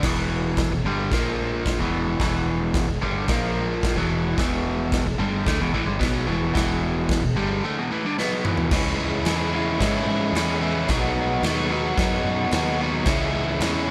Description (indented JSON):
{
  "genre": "garage rock duo or trio",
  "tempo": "110 BPM",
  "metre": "4/4",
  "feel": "straight",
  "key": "unclear",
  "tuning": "A4 = 440 Hz",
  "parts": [
    { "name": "overdriven electric guitar", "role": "riff", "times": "0.0-13.9 s", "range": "E2 to F#4", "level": "-26 LUFS", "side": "equal", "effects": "none" },
    { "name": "woody fretless electric bass", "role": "bass", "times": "0.0-13.9 s", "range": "E1 to G#2", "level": "-31 LUFS", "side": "equal", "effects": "none" },
    { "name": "raw garage drum kit", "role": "drums", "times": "0.0-13.7 s", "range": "crash cymbal, kick drum, snare drum, toms", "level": "-29 LUFS", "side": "equal", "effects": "none" }
  ],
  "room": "light reverb",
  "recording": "none",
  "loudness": "-23 LUFS",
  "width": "mono",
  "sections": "0.0-8.7 A section; 8.7-13.9 B section",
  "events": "drum fill 8.2-8.7",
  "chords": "0.0 E5; 1.1 A#5; 1.8 E5; 3.3 A#5; 4.0 E5; 8.7 C#m; 10.9 B; 13.1 C#m",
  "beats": "| 0.03 0.58 1.12 1.66 | 2.21 2.75 3.29 3.83 | 4.38 4.92 5.46 6.01 | 6.55 7.09 7.64 8.18 | 8.72 9.27 9.81 10.35 | 10.89 11.44 11.98 12.52 | 13.06 13.61"
}